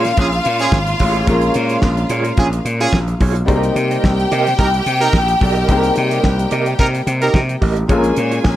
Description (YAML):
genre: disco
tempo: 109 BPM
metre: 4/4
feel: straight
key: unclear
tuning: A4 = 437 Hz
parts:
  - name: clear studio string section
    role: second line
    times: 0.0-8.6 s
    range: F4 to Ab5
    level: -20 LUFS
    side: left 1 dB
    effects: none
  - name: clear baby grand piano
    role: accompaniment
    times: 0.0-8.6 s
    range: G3 to Bb4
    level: -22 LUFS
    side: left 3 dB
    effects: none
  - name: mellow electric guitar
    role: accompaniment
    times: 0.0-8.5 s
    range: F4 to Eb5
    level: -23 LUFS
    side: right 4 dB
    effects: tremolo
  - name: gritty slap bass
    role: bass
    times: 0.0-8.6 s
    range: Ab1 to C3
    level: -18 LUFS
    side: equal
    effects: overdrive
  - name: damped 70s drum kit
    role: drums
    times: 0.0-8.6 s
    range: hi-hat, kick drum, snare drum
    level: -18 LUFS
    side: equal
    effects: none
  - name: clear horn section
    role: stabs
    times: 0.2-7.4 s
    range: Db4 to Bb4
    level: -19 LUFS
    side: right 3 dB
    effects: none
room: light reverb, small room ambience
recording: none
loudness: -13 LUFS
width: side -13 dB against mid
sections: 0.0-8.6 A section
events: none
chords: 0.0 Bbm7; 3.5 Cm7; 7.9 Bbm7